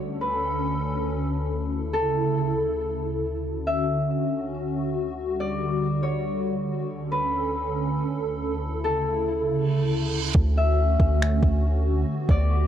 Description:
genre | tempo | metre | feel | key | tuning
hip hop, atmospheric cloud-rap | free time | none | none | D major | A4 = 441 Hz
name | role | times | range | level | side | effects
Celtic harp | melody | 0.0-12.7 s | A4 to E5 | -29 LUFS | left 2 dB | ping-pong delay
hollow soft pad | sustained chords | 0.0-12.7 s | D2 to A4 | -26 LUFS | right 1 dB | ensemble chorus, sidechain pumping
reverse cymbal | sound effects | 9.7-10.3 s | none | -34 LUFS | right 8 dB | none
long sustained 808-style bass | bass | 10.3-12.7 s | D2 | -21 LUFS | equal | none
smooth R&B drum kit | drums | 10.3-12.4 s | finger snaps, kick drum | -20 LUFS | equal | overdrive
room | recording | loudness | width
little or no reverb | worn, warbling old tape, cassette tape, warbly pitch drift | -22 LUFS | side -10 dB against mid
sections
0.0-10.3 A section; 10.3-12.7 B section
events
reverse cymbal 9.7-10.3; hi-hats muted 10.3-12.7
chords
0.0 Bm7/D; 1.7 Aadd11/D; 3.4 Dmaj7; 5.2 Dadd11; 6.9 Bm7/D; 8.6 Aadd11/D; 10.3 Dmaj7; 12.1 Gmaj7/D

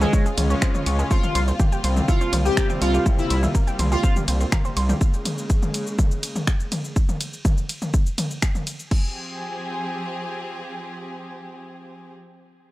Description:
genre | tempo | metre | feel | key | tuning
melodic techno | 123 BPM | 4/4 | straight | F minor | A4 = 440 Hz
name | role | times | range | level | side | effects
resonant sweep polysynth | melody | 0.0-4.1 s | Ab3 to G4 | -27 LUFS | left 1 dB | lush chorus, sidechain pumping, tape echo
dark detuned synth bell | second line | 0.0-3.0 s | Ab4 to G5 | -34 LUFS | right 1 dB | chorus, sidechain pumping, tape echo
warm studio string section | sustained chords | 0.0-12.1 s | C3 to Ab4 | -31 LUFS | left 1 dB | sidechain pumping
analog pluck | arpeggios | 0.0-5.0 s | G3 to Db6 | -31 LUFS | right 2 dB | chorus, sidechain pumping, tape echo
brassy analog pad | stabs | 0.0-3.3 s | C3 to Db4 | -30 LUFS | left 1 dB | chorus, sidechain pumping, tape echo
gritty driven synth bass | bass | 0.0-4.9 s | C2 to Db2 | -21 LUFS | equal | distortion, sidechain pumping
punchy analog drum machine | drums | 0.0-9.0 s | crash cymbal, finger snaps, hi-hat, ride cymbal, shaker, toms | -27 LUFS | equal | overdrive
electronic kick drum | drums | 0.1-9.0 s | none | -20 LUFS | equal | none
room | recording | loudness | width
little or no reverb | dry, gritty hardware recording | -20 LUFS | side -17 dB against mid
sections
0.0-8.9 A section; 8.9-12.7 B section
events
drop 0.0-8.9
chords
0.0 Dbmaj7; 1.1 C7sus4; 5.0 Bbm7; 7.0 N.C.; 8.9 Fmadd9

